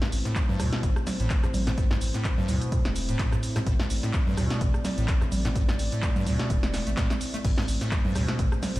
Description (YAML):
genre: acid house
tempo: 127 BPM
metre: 4/4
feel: swing 55% on 16ths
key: A minor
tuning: A4 = 440 Hz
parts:
  - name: dark analog pad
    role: sustained chords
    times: 0.0-8.8 s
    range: A3 to D5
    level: -35 LUFS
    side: left 1 dB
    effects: chorus, sidechain pumping
  - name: acid bass, square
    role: riff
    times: 0.0-8.8 s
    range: A1 to A3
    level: -31 LUFS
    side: equal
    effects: tube saturation, lush chorus, sidechain pumping, digital delay
  - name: punchy analog drum machine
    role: drums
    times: 0.0-8.8 s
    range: cabasa, congas, crash cymbal, handclaps, hi-hat, rim click, snare drum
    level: -31 LUFS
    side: right 1 dB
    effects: studio reverb
  - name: saturated sub bass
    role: bass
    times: 0.1-8.8 s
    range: E1 to A2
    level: -30 LUFS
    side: equal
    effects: sidechain pumping
  - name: electronic kick drum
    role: drums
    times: 0.4-8.5 s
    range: none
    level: -27 LUFS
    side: equal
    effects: studio reverb
room: light reverb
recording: played on a big sound system in a bare room, stone room reverb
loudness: -24 LUFS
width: side -17 dB against mid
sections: 0.0-8.8 A section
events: drum fill 6.7-7.4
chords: 0.0 Am